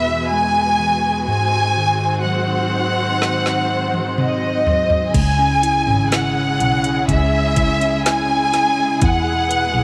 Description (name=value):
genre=pop ballad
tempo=62 BPM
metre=4/4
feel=straight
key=unclear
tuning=A4 = 441 Hz
part: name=warm symphonic violin section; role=melody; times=0.0-9.8 s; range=D#5 to G#5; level=-20 LUFS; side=equal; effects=slapback echo
part: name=bell-like tine electric piano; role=accompaniment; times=0.0-9.8 s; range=E2 to B4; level=-24 LUFS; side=equal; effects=none
part: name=dark studio string section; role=sustained chords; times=0.0-9.8 s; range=B2 to B#4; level=-27 LUFS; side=equal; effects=none
part: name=smooth R&B drum kit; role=drums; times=3.2-9.7 s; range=crash cymbal, hi-hat, kick drum, snare drum, toms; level=-24 LUFS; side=equal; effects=none
part: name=dark double bass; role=bass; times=5.1-9.8 s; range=G#1 to E2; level=-24 LUFS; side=equal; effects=none
room=moderate echo chamber reverb, RT60 2.2 s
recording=none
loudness=-18 LUFS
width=mono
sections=0.0-5.2 A section; 5.2-9.8 B section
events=drum fill 3.2-5.2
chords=0.0 E; 1.3 G#7; 5.2 C#m; 9.0 E